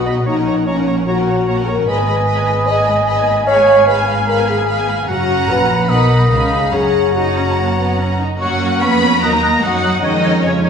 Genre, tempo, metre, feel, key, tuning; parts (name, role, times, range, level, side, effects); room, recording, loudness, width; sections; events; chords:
classical, dramatic, fast romantic movement for symphony orchestra; 148 BPM; 4/4; rubato; F# major; A4 = 439 Hz
dark symphonic violin section; melody; 0.0-10.7 s; C#5 to B5; -22 LUFS; left 2 dB
warm symphonic violin section; second line; 0.0-10.7 s; C#4 to Ab5; -24 LUFS; left 2 dB
rich symphonic viola section; accompaniment; 0.0-10.7 s; F#3 to D#4; -23 LUFS; right 2 dB
warm French horn section; sustained chords; 0.0-10.7 s; C#3 to D#5; -17 LUFS; left 1 dB
rich symphonic cello section; bass; 0.0-10.7 s; F#2 to B3; -22 LUFS; right 2 dB
warm symphonic double bass section; bass; 0.0-10.7 s; F#1 to F#2; -20 LUFS; right 1 dB
mellow hollow silver concert flute; second line; 0.1-10.7 s; F#5 to G#6; -24 LUFS; left 1 dB
warm oboe; second line; 0.1-10.7 s; C#5 to F#5; -23 LUFS; right 2 dB
wet recital hall reverb, RT60 1.5 s; recorded in a church or concert hall, nothing above 10.9 kHz; -12 LUFS; side -6 dB against mid
0.0-8.4 A section; 8.4-10.7 A section
0.3 F#/A#; 1.9 G#m; 3.5 Fdim/Ab; 5.1 F#; 5.9 Bmaj7; 6.3 C#9; 6.7 F#; 9.2 D#m; 10.0 C#/E#